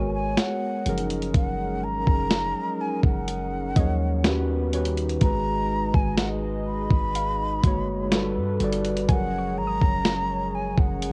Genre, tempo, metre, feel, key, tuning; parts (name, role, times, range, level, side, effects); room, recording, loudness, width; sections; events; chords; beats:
contemporary R&B; 62 BPM; 4/4; straight; G# dorian; A4 = 440 Hz
breathy concert flute; melody; 0.0-11.1 s; F#5 to B5; -32 LUFS; equal; cassette tape, tape echo
muted felt-like synth keys; accompaniment; 0.0-11.1 s; D#3 to D5; -31 LUFS; equal; chorus, cassette tape
hollow soft pad; sustained chords; 0.0-11.1 s; D#3 to D#5; -37 LUFS; equal; chorus, cassette tape
warm 808-style bass; bass; 0.0-11.1 s; F#1 to G2; -32 LUFS; equal
soft round pluck; texture; 0.0-11.1 s; C#5 to D#6; -42 LUFS; equal; chorus, cassette tape, tape echo
dusty soul sampler-style drum kit; drums; 0.4-11.1 s; hi-hat, kick drum, snare drum; -25 LUFS; equal; cassette tape
digital ambience; home recording on cassette; -25 LUFS; mono
0.0-11.1 A section
0.0 G#m9; 0.9 D#m11/F#; 4.2 D#7alt; 5.2 G#m9; 8.1 Gmaj9; 9.1 F#maj9
0.38 | 1.34 2.31 3.28 4.25 | 5.21 6.18 7.15 8.12 | 9.09 10.05 11.02